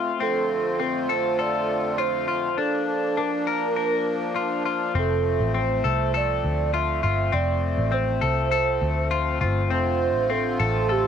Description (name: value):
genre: dream pop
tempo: 101 BPM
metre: 4/4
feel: straight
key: unclear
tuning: A4 = 439 Hz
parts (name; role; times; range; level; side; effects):
- accordion; sustained chords; 0.0-11.1 s; F2 to F4; -28 LUFS; left 2 dB; light tremolo tuning, cassette tape
- semi-hollow electric guitar; arpeggios; 0.0-11.1 s; C4 to Bb4; -26 LUFS; left 8 dB; wide subtle chorus, cassette tape, analog delay
- hollow clarinet-like synth lead; melody; 0.2-11.1 s; G4 to E5; -26 LUFS; right 7 dB; chorus, phaser, cassette tape, analog delay
- vintage muted picked electric bass; bass; 5.0-11.1 s; F1 to D2; -25 LUFS; equal; none
room: wet booth ambience, RT60 0.2 s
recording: home recording on cassette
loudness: -21 LUFS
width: side -8 dB against mid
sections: 0.0-11.1 A section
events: none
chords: 0.2 Dm7/F; 2.6 Bb/F; 5.0 Dm7/F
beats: | 0.20 0.80 1.39 1.98 | 2.58 3.17 3.77 4.36 | 4.95 5.55 6.14 6.74 | 7.33 7.92 8.52 9.11 | 9.71 10.30 10.89